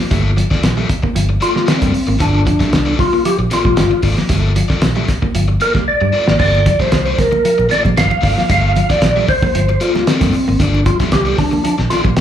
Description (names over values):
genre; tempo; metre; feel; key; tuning
funk; 114 BPM; 4/4; straight; G dorian; A4 = 441 Hz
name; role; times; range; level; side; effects
crunchy overdriven guitar; accompaniment; 0.0-12.2 s; Bb3 to E5; -23 LUFS; left 5 dB; plate reverb, slapback echo
clean electric guitar; riff; 0.0-12.2 s; F3 to Bb3; -23 LUFS; right 5 dB; slapback echo
vintage muted fingered electric bass; bass; 0.1-12.2 s; G1 to G2; -16 LUFS; equal; none
cloth-damped thuddy drum kit; drums; 0.1-12.2 s; hi-hat, kick drum, snare drum, splash cymbal; -17 LUFS; equal; none
percussive tonewheel organ; melody; 1.4-12.2 s; C4 to F5; -16 LUFS; equal; fast rotary speaker, plate reverb, slapback echo
congas; percussion; 6.4-12.2 s; none; -26 LUFS; right 3 dB; none
room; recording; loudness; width
light reverb; live gig heard through the venue's PA, club reverb; -12 LUFS; side -10 dB against mid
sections
0.0-12.2 A section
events
drum fill 5.9-6.4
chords
0.0 Gm9